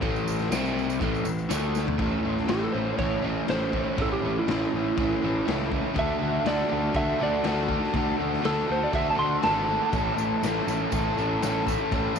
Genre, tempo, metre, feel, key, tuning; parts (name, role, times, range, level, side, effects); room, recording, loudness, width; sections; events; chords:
garage rock duo or trio; 121 BPM; 4/4; straight; A major; A4 = 442 Hz
overdriven electric guitar; riff; 0.0-12.2 s; A2 to A4; -26 LUFS; equal
fuzz picked electric bass; bass; 0.0-12.2 s; G#1 to D2; -31 LUFS; equal; overdrive
raw garage drum kit; drums; 0.0-12.0 s; crash cymbal, kick drum, snare drum, toms; -32 LUFS; left 4 dB
tambourine; percussion; 0.2-1.9, 9.9-12.2 s; -42 LUFS; right 13 dB
electric slide guitar; melody; 2.5-10.4 s; E4 to C6; -28 LUFS; right 3 dB; tape echo
light reverb, small room ambience; 1960s-style stereo; -23 LUFS; side -6 dB against mid
0.0-2.0 A section; 2.0-12.2 B section
drum fill 1.8; electric slide guitar solo 2.0-12.2
0.0 A5; 0.5 C5; 1.0 A5; 1.5 D5; 2.0 A; 6.0 D; 9.9 A